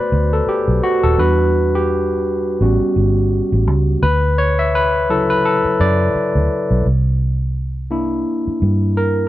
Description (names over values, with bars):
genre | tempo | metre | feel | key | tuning
lush 1970s-style soul | 85 BPM | 4/4 | swing 58% on 16ths | unclear | A4 = 440 Hz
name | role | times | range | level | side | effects
barky tine electric piano | accompaniment | 0.0-9.3 s | C#3 to E5 | -16 LUFS | left 1 dB | none
vintage muted fingered electric bass | bass | 0.1-9.3 s | D#1 to G2 | -17 LUFS | equal | none
room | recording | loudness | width
light reverb | none | -14 LUFS | side -15 dB against mid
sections
0.0-9.3 A section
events
tine electric piano solo 0.0-9.3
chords
0.0 Gmaj7; 1.2 Em9; 2.6 A13; 4.0 Dmaj9; 6.9 C9